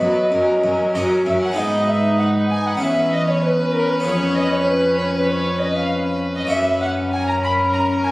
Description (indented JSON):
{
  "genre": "classical, baroque-style concerto movement with solo episodes",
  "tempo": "97 BPM",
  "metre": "4/4",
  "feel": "straight",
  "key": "unclear",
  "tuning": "A4 = 441 Hz",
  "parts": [
    { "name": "mellow baroque flute", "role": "melody", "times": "0.0-8.1 s", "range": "A#4 to B5", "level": "-21 LUFS", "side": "equal", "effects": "none" },
    { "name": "rich chamber violin section", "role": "melody", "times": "0.0-8.1 s", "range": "A#4 to B4", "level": "-28 LUFS", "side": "left 1 dB", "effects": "none" },
    { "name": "warm chamber violin section", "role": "second line", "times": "0.0-8.1 s", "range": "B3 to B5", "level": "-26 LUFS", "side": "equal", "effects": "none" },
    { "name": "dark chamber viola section", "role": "accompaniment", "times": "0.0-8.1 s", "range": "F#3 to D#4", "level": "-22 LUFS", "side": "left 1 dB", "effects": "none" },
    { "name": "harpsichord", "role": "accompaniment", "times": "0.0-8.1 s", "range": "E2 to C#5", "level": "-29 LUFS", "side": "equal", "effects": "none" },
    { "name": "dark chamber cello section", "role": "bass", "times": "0.0-8.1 s", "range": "E2 to G#2", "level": "-24 LUFS", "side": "right 1 dB", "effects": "none" }
  ],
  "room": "wet recital hall reverb, RT60 1.7 s",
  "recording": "recorded on a phone in the room, club reverb, compression",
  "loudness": "-16 LUFS",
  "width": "side -20 dB against mid",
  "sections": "0.0-1.6 A section; 1.6-8.1 A section",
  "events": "none",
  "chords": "0.3 F#; 1.6 G#m; 2.8 C#m7/E; 4.0 C#7/E#; 6.5 F#"
}